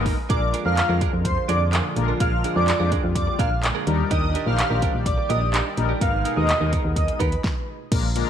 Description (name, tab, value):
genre	dance-pop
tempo	126 BPM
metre	4/4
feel	straight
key	unclear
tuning	A4 = 440 Hz
part	mellow synth brass	accompaniment	0.0-8.3 s	G3 to C5	-29 LUFS	left 12 dB	chorus, sidechain pumping
part	chorused pulse-width pad	sustained chords	0.0-8.3 s	Bb2 to Eb6	-32 LUFS	equal	sidechain pumping
part	direct-recorded clean electric guitar	riff	0.0-7.4 s	Cb4 to Bb4	-31 LUFS	right 14 dB	wide subtle chorus
part	solid FM bass	bass	0.0-8.2 s	Ab1 to F2	-24 LUFS	equal	sidechain pumping
part	pop drum kit	drums	0.1-8.3 s	crash cymbal, handclaps, hi-hat, kick drum, snare drum	-25 LUFS	equal	none
part	airy dreamy lead	melody	0.3-7.3 s	Cb5 to F5	-26 LUFS	equal	chorus, sidechain pumping, tape echo
room	light reverb, digital ambience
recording	1960s-style stereo with parts hard left and right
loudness	-19 LUFS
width	side -9 dB against mid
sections	0.3-7.9 A section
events	stop 7.4-7.9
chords	0.3 Bb7; 3.9 Ebmaj7; 6.0 Abmadd9